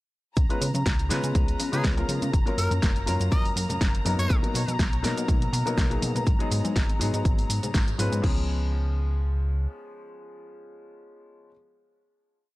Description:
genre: nu-disco, nu disco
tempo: 122 BPM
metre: 4/4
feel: swing 54% on 16ths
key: Db mixolydian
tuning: A4 = 438 Hz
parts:
  - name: warm studio violin section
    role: sustained chords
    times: 0.4-8.2 s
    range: Bb5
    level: -36 LUFS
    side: left 1 dB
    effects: sidechain pumping
  - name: chorused synth bass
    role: bass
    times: 0.4-9.7 s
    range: Gb1 to Db3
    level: -27 LUFS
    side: equal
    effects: none
  - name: electronic kick drum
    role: drums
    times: 0.4-8.3 s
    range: none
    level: -24 LUFS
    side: equal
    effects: none
  - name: pop drum kit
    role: drums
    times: 0.4-8.3 s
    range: crash cymbal, hi-hat, shaker, snare drum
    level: -31 LUFS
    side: right 1 dB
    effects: none
  - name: cabasa and congas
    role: percussion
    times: 0.4-8.2 s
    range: none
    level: -37 LUFS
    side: left 2 dB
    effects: none
  - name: warm baby grand piano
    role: accompaniment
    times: 0.5-11.5 s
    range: F3 to Cb5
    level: -32 LUFS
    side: left 2 dB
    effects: analog delay
  - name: raspy tenor saxophone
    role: melody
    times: 1.7-4.4 s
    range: Ab4 to Eb5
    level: -35 LUFS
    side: equal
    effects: analog delay
room: small room reverb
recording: dry, gritty hardware recording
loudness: -22 LUFS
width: side -19 dB against mid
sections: 0.4-8.2 drop; 8.2-12.2 final chord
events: drop 0.4-8.2; band accent 7.7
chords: 0.4 Db7; 2.3 Gbmaj7; 4.3 Cbmaj7; 6.3 Abm7; 8.2 Db7

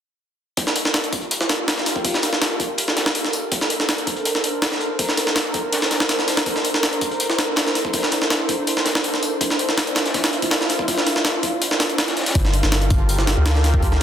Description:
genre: drum and bass, jungle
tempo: 163 BPM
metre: 4/4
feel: straight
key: G dorian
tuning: A4 = 436 Hz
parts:
  - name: lush unison pad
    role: sustained chords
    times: 1.2-14.0 s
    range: D4 to C5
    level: -25 LUFS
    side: equal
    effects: chorus
  - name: crunchy breakbeat drum kit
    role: drums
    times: 0.6-12.3 s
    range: hi-hat, snare drum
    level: -29 LUFS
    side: left 2 dB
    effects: none
  - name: jungle sampler-style drum kit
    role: drums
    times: 0.6-14.0 s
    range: hi-hat, kick drum, snare drum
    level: -19 LUFS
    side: equal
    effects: overdrive, high-pass filter on hats, high-pass filter on kick, high-pass filter on snare, high-pass filter on room
  - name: soft dub sub bass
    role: bass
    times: 12.4-14.0 s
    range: G1 to D2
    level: -18 LUFS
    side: equal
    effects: tube saturation
room: moderate echo chamber reverb, RT60 2.2 s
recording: dense, heavily limited modern master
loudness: -18 LUFS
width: side -9 dB against mid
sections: 0.6-12.4 A section; 12.4-14.0 B section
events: kick drops out 11.6-12.4; drop 12.4-14.0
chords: 0.6 Gm9; 3.5 Bbmaj9; 6.5 C13; 9.4 Dm9; 12.4 Gm9

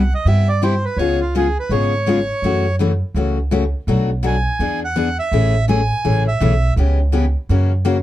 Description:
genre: acoustic string swing (jazz manouche)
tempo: 166 BPM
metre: 4/4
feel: swing 62% on 8ths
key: A major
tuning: A4 = 441 Hz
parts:
  - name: accordion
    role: melody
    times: 0.0-6.7 s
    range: E#4 to G#5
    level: -22 LUFS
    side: right 3 dB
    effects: none
  - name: upright bass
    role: bass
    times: 0.0-8.0 s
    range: G#1 to G2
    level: -18 LUFS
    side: right 1 dB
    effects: none
  - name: picked steel-string acoustic guitar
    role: accompaniment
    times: 0.3-8.0 s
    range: B2 to G#4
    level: -19 LUFS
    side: left 4 dB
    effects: none
room: light reverb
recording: dark, warm production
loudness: -15 LUFS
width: side -14 dB against mid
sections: 0.0-8.0 A section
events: accordion solo 0.0-8.0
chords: 0.0 Cmaj7; 1.0 C#7; 2.4 F#m7; 3.9 Bm7; 4.6 E7; 5.3 Amaj7; 6.8 C#m7b5; 7.5 F#7

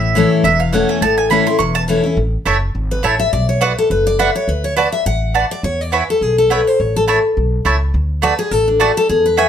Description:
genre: bluegrass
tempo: 208 BPM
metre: 4/4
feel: swing 56% on 8ths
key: A major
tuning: A4 = 440 Hz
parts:
  - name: picked steel-string acoustic guitar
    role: accompaniment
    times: 0.0-9.5 s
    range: E2 to F#5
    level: -15 LUFS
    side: left 3 dB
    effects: none
  - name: mandolin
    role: stabs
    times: 0.0-9.5 s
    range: A3 to C#6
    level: -16 LUFS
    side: right 5 dB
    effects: none
  - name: upright bass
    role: bass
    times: 0.0-9.5 s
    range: E1 to E2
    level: -20 LUFS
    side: equal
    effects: none
room: moderate studio reverb, RT60 0.6 s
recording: none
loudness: -13 LUFS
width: side -9 dB against mid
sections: 0.0-2.2 A section; 2.2-9.5 A section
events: mandolin solo 0.0-2.2; steel-string acoustic guitar solo 2.2-9.5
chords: 0.0 A; 3.3 Bm; 4.5 D6; 5.6 E6; 6.8 A; 7.9 D

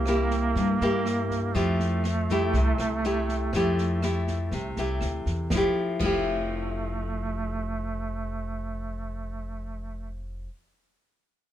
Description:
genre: bossa nova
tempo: 121 BPM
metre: 4/4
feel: straight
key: F major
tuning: A4 = 440 Hz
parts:
  - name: warm duduk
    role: second line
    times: 0.0-10.2 s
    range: A3 to Bb3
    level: -32 LUFS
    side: right 5 dB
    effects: none
  - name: nylon-string guitar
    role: accompaniment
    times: 0.0-10.5 s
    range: G2 to G4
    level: -28 LUFS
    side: left 2 dB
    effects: none
  - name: upright bass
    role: bass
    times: 0.0-10.5 s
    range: F1 to G2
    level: -30 LUFS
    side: equal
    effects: none
  - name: open jazz drum kit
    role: drums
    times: 0.1-6.1 s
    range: crash cymbal, kick drum, rim click, snare drum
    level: -35 LUFS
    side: right 1 dB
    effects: none
room: light reverb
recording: minimal, uncompressed stereo recording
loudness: -25 LUFS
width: side -11 dB against mid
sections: 0.0-5.5 A section; 5.5-9.5 B section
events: none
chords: 0.0 C7; 1.5 Fmaj9

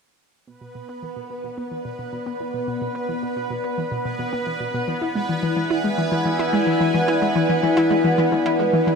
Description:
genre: ambient, sequencer-driven space music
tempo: 109 BPM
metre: 4/4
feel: straight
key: B dorian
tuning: A4 = 437 Hz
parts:
  - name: sweeping resonant pad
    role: sustained chords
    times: 0.5-9.0 s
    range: E4 to G#5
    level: -22 LUFS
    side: equal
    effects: chorus, shimmer reverb
  - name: analog pluck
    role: riff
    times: 0.5-9.0 s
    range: B2 to E4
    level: -24 LUFS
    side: left 1 dB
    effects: chorus, ping-pong delay
  - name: bubbling stepped-filter texture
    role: texture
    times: 0.5-9.0 s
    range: B3 to B4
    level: -27 LUFS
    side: right 1 dB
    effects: chorus, built-in reverb, shimmer reverb
room: wet huge ambient reverb, RT60 7.6 s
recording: none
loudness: -19 LUFS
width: side -5 dB against mid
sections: 0.5-9.0 A section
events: fade-in on synth arpeggio sound 0.5-9.0; fade-in on analog synth pad 0.5-9.0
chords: 0.5 Bm; 4.9 E7

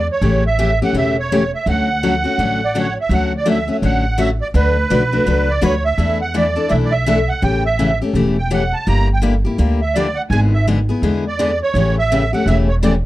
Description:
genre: acoustic string swing (jazz manouche)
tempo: 167 BPM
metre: 4/4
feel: swing 61% on 8ths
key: D major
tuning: A4 = 441 Hz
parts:
  - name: musette accordion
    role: melody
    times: 0.0-12.9 s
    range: B4 to Bb5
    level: -19 LUFS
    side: right 3 dB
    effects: none
  - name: upright bass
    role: bass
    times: 0.0-13.0 s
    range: E1 to E2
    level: -18 LUFS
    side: equal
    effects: none
  - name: picked steel-string acoustic guitar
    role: accompaniment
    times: 0.2-12.9 s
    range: C#3 to B4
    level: -19 LUFS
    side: left 3 dB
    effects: none
room: small room reverb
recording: dry, close 1970s-style studio recording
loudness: -14 LUFS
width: side -16 dB against mid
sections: 0.0-3.1 A section; 3.1-13.1 A section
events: none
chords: 0.2 A7; 1.7 Dmaj7; 4.5 Bm7; 6.0 E7sus4; 7.4 A7; 8.9 Gm6; 10.3 E7/G#; 11.7 A7

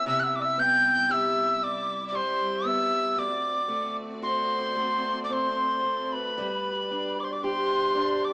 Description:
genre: celtic folk, Celtic slow air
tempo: 57 BPM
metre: 3/4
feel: rubato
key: G major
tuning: A4 = 440 Hz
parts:
  - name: breathy tin whistle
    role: melody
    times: 0.0-8.3 s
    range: B5 to G6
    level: -25 LUFS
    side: equal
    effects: none
  - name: bright baroque flute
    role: second line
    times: 0.0-8.3 s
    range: B4 to G5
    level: -32 LUFS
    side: left 1 dB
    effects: none
  - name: fingerpicked steel-string acoustic guitar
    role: accompaniment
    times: 0.0-8.3 s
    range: D2 to G4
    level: -31 LUFS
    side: right 1 dB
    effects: none
  - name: bright chamber string section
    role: sustained chords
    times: 0.0-8.3 s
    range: B2 to E5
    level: -41 LUFS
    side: equal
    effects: none
room: moderate large studio reverb, RT60 1.4 s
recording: band playing live in one room, small speaker sound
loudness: -24 LUFS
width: side -25 dB against mid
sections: 0.0-8.3 A section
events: none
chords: 0.1 Cmaj7; 3.2 D7; 6.4 G

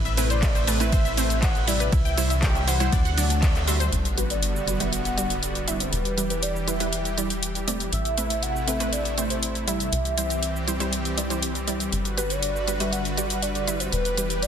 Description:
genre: progressive house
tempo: 120 BPM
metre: 4/4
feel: straight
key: G major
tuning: A4 = 439 Hz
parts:
  - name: supersaw pad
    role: sustained chords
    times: 0.0-14.5 s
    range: C3 to B4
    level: -31 LUFS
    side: equal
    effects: sidechain pumping
  - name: wide unison pluck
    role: stabs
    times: 0.0-14.4 s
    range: F#3 to E5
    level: -30 LUFS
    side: right 2 dB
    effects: sidechain pumping, ping-pong delay
  - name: tight sequencer bass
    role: bass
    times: 0.0-14.5 s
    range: E1 to D2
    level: -28 LUFS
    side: equal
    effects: tube saturation, sidechain pumping
  - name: analog pluck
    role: arpeggios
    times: 0.1-3.9 s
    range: E4 to C6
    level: -32 LUFS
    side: left 1 dB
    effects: chorus, sidechain pumping, ping-pong delay
  - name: deep house drum kit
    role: drums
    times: 0.1-14.5 s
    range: cabasa, handclaps, hi-hat, ride cymbal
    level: -28 LUFS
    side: equal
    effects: none
  - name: warm velvety synth lead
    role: melody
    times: 0.2-14.5 s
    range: B4 to G5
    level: -30 LUFS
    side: equal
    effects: chorus, tape echo
  - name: breakbeat sampler-style drum kit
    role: drums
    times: 0.2-3.8 s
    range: ride cymbal, snare drum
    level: -40 LUFS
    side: right 4 dB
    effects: none
  - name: electronic kick drum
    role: drums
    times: 0.4-3.5 s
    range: none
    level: -22 LUFS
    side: equal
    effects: none
  - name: sub drop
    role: sound effects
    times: 3.9-5.9 s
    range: none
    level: -30 LUFS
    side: equal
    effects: none
room: light reverb, digital ambience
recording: dense, heavily limited modern master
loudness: -22 LUFS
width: side -8 dB against mid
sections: 0.0-3.9 A section; 3.9-14.5 B section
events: drop 0.0-3.9; impact 3.9-5.9; filter sweep on synth pluck 3.9-14.5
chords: 0.0 Amadd9; 1.9 C; 2.9 D7; 3.9 Gmaj7; 5.9 Em; 7.9 Amadd9; 9.9 C; 11.9 Gmaj7; 13.9 Em

